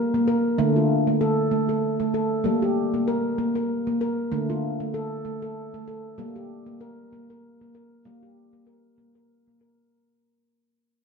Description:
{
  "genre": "world meditative",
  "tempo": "96 BPM",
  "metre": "3/4",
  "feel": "swing 56% on 16ths",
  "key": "G minor",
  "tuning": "A4 = 442 Hz",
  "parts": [
    { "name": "handpan", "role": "arpeggios", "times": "0.0-9.9 s", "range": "D3 to Bb4", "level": "-23 LUFS", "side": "equal", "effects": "none" }
  ],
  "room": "wet recital hall reverb, RT60 1.6 s, studio ambience",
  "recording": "dark, warm production",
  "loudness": "-22 LUFS",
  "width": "side -5 dB against mid",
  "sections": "0.0-9.9 A section",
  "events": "fade-out 0.0-9.9",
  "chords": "0.0 Gm; 0.6 Dm; 2.5 Gm; 4.3 Dm; 6.2 Gm"
}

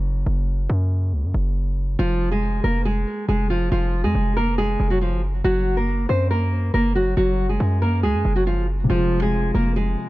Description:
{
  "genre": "hip hop, drill",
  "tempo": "139 BPM",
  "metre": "4/4",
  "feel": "half-time",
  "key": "F phrygian",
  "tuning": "A4 = 441 Hz",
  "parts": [
    { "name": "dark grand piano", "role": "accompaniment", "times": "0.0-2.0, 8.8-10.1 s", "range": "C3 to Gb4", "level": "-28 LUFS", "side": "left 2 dB", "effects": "low-pass filter" },
    { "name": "hard-hitting 808-style bass", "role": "bass", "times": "0.0-10.0 s", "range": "F1 to Gb2", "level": "-21 LUFS", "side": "equal", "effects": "none" },
    { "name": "nylon-string guitar", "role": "melody", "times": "2.0-10.1 s", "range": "F3 to C5", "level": "-22 LUFS", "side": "right 1 dB", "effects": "low-pass filter" }
  ],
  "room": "light reverb",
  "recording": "dark, warm production",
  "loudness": "-19 LUFS",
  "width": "side -18 dB against mid",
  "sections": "0.0-2.0 A section; 2.0-10.1 B section",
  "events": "break 0.0-2.0",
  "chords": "0.0 Gb; 2.0 Fm; 5.4 Gb; 8.9 Fm"
}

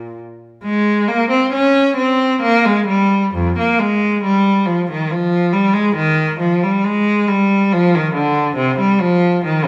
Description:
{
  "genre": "classical, baroque-style suite movement for unaccompanied cello",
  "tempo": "69 BPM",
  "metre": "3/4",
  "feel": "rubato",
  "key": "F minor",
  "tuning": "A4 = 441 Hz",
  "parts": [
    { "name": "rich cello", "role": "solo", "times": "0.0-9.7 s", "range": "F2 to Db4", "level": "-16 LUFS", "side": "equal", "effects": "none" }
  ],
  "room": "moderate recital hall reverb, RT60 1.4 s",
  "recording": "none",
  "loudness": "-16 LUFS",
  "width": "mono",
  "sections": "0.6-9.7 A section",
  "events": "none",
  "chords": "none"
}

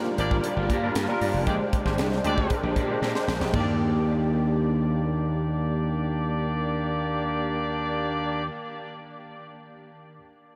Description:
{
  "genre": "polished 1980s jazz-funk pop",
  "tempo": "116 BPM",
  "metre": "4/4",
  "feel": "straight",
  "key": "Eb major",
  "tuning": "A4 = 440 Hz",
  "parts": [
    { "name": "overdriven tine electric piano", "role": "accompaniment", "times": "0.0-10.2 s", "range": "Eb3 to Bb5", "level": "-33 LUFS", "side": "equal", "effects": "ensemble chorus" },
    { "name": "electric guitar through a small old amp", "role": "riff", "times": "0.0-8.6 s", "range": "Ab3 to Bb4", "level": "-35 LUFS", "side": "equal", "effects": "ensemble chorus" },
    { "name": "clear horn section", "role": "second line", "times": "0.2-8.4 s", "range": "Ab3 to D5", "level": "-34 LUFS", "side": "equal", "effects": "tape echo" },
    { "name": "gritty slap bass", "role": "bass", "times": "0.2-8.5 s", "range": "F1 to Bb2", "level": "-30 LUFS", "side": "equal", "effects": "overdrive" },
    { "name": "crisp fusion drum kit", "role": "drums", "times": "0.2-3.7 s", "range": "crash cymbal, hi-hat, kick drum, snare drum, toms", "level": "-32 LUFS", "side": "equal", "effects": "none" }
  ],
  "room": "moderate huge ambient reverb, RT60 6.1 s",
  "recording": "dreamy mix soaked in reverb",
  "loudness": "-26 LUFS",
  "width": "mono",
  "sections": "0.0-3.5 A section; 3.5-7.7 B section",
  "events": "tine electric piano fill 2.8-3.5; drum fill 3.0-3.5",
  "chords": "0.0 Gm7; 1.5 Bb13; 3.5 Ebmaj7"
}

